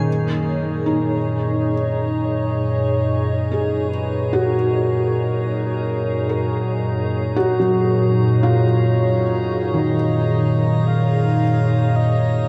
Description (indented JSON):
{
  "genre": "ambient",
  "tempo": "55 BPM",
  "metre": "4/4",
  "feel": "straight",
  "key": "F# major",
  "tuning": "A4 = 441 Hz",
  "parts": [
    { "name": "glassy FM pad", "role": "sustained chords", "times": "0.0-12.5 s", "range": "F#2 to C#5", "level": "-21 LUFS", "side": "equal", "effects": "ensemble chorus, built-in reverb" },
    { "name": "felt-muted upright piano", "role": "arpeggios", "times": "0.0-12.5 s", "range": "D#3 to A#4", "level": "-24 LUFS", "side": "equal", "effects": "delay" },
    { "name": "drifting glass-harmonics texture", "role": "texture", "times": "0.0-12.5 s", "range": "A#5", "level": "-40 LUFS", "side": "equal", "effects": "chorus, built-in reverb" },
    { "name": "breathy flute-like synth lead", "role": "melody", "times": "0.1-12.5 s", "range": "A#4 to E#5", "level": "-32 LUFS", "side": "equal", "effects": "subtle chorus, delay" }
  ],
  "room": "wet cathedral reverb, RT60 6.0 s",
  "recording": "none",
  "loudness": "-19 LUFS",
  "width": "mono",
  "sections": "0.1-12.5 A section",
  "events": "fade-in on synth texture 0.1-12.5; fade-in on soft synth lead 0.1-12.5",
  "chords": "0.0 F#maj7"
}